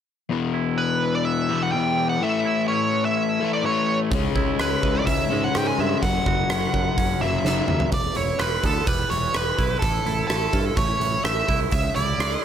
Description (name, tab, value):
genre	quiet-loud alternative rock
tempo	126 BPM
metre	4/4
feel	straight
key	unclear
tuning	A4 = 440 Hz
part	twangy electric guitar	arpeggios	0.3-12.4 s	E2 to F#4	-32 LUFS	right 8 dB	wide subtle chorus, tape echo
part	crunchy overdriven guitar	riff	0.3-7.9 s	E2 to C#4	-24 LUFS	left 8 dB	none
part	nasal lead guitar with a parked wah	melody	0.8-12.4 s	A4 to G#5	-24 LUFS	right 2 dB	overdrive
part	picked electric bass	bass	4.1-12.4 s	E1 to G#2	-28 LUFS	right 1 dB	none
part	huge arena drum kit	drums	4.1-12.3 s	hi-hat, kick drum, rim click, snare drum, toms	-25 LUFS	right 1 dB	none
room	light reverb, small room ambience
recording	none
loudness	-20 LUFS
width	side -9 dB against mid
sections	0.3-7.9 A section; 7.9-12.4 B section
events	drum fill 7.4-7.9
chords	0.3 Em; 2.2 A; 4.1 C#m; 6.0 F#; 7.9 Em; 9.8 A; 11.7 C#m